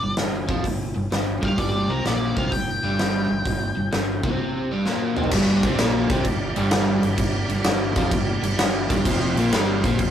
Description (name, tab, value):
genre	blues rock power trio and southern rock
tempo	128 BPM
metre	4/4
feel	swing 68% on 8ths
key	G minor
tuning	A4 = 441 Hz
part	octave-fuzz lead guitar	melody	0.0-4.8 s	Bb4 to G5	-28 LUFS	left 2 dB	distortion
part	crunchy overdriven guitar	riff	0.0-10.1 s	F2 to F4	-24 LUFS	equal	none
part	growling fingered electric bass	bass	0.0-10.1 s	F1 to F2	-28 LUFS	equal	overdrive
part	huge arena drum kit	drums	0.2-10.1 s	crash cymbal, hi-hat, kick drum, snare drum, toms	-23 LUFS	equal	none
part	overdriven tonewheel organ	sustained chords	5.3-10.1 s	C4 to F5	-31 LUFS	right 2 dB	fast rotary speaker
room	light reverb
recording	rough rehearsal-room recording, warm saturation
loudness	-20 LUFS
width	side -9 dB against mid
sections	0.0-5.3 A section; 5.3-10.1 B section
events	drum fill 4.9-5.3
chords	0.0 Gm; 9.1 F5